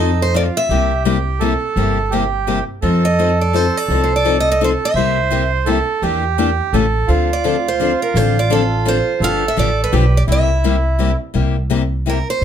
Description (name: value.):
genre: acoustic string swing (jazz manouche).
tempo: 169 BPM.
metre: 3/4.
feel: swing 60% on 8ths.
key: C mixolydian.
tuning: A4 = 440 Hz.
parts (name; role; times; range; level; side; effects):
picked steel-string acoustic guitar; melody; 0.0-1.0, 3.0-12.4 s; A4 to F5; -19 LUFS; right 2 dB; plate reverb.
accordion; second line; 0.0-11.2 s; Eb4 to C5; -20 LUFS; right 6 dB; none.
picked steel-string acoustic guitar; accompaniment; 0.0-12.4 s; C3 to A4; -20 LUFS; left 8 dB; none.
upright bass; bass; 0.0-12.4 s; G1 to F2; -18 LUFS; equal; none.
room: moderate club reverb, RT60 0.6 s.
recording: none.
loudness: -14 LUFS.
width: side -9 dB against mid.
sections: 0.0-11.3 A section; 11.3-12.4 B section.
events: steel-string acoustic guitar solo 11.3-12.4.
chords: 0.0 F7; 0.7 C7; 2.8 F7; 5.0 C7; 6.0 Em7b5; 6.7 A7; 7.1 Dm7; 9.2 G7; 10.3 C7.